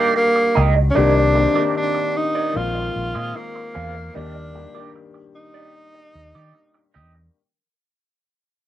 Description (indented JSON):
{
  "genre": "soul",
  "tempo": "75 BPM",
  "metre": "4/4",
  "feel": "straight",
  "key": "Eb major",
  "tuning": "A4 = 440 Hz",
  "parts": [
    { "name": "breathy tenor saxophone", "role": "melody", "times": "0.0-6.9 s", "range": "Bb3 to F4", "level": "-20 LUFS", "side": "right 1 dB", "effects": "cassette tape" },
    { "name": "warm concert grand piano", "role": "accompaniment", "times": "0.0-7.4 s", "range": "Eb3 to D5", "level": "-25 LUFS", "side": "left 7 dB", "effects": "cassette tape" },
    { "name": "electric guitar through a small old amp", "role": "riff", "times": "0.0-7.2 s", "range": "Eb4 to F5", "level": "-25 LUFS", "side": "right 8 dB", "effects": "wah, warbly pitch drift, cassette tape" },
    { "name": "vintage muted fingered electric bass", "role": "bass", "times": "0.6-7.3 s", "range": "Bb1 to Eb3", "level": "-21 LUFS", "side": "equal", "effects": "none" },
    { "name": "vibraphone with soft mallets", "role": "texture", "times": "3.7-4.5 s", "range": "F6", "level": "-44 LUFS", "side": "left 7 dB", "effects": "stereo widening, cassette tape" }
  ],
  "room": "moderate studio reverb, RT60 0.5 s",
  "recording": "home recording on cassette",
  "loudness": "-16 LUFS",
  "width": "side -12 dB against mid",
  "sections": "0.0-7.3 A section",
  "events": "fade-out 0.0-7.3",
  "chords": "0.0 Ebmaj7; 1.0 Cm9; 2.6 Bb9sus4; 4.2 Ebmaj7",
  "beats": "0.16 | 0.96 1.76 2.55 3.35 | 4.15 4.95 5.75 6.54"
}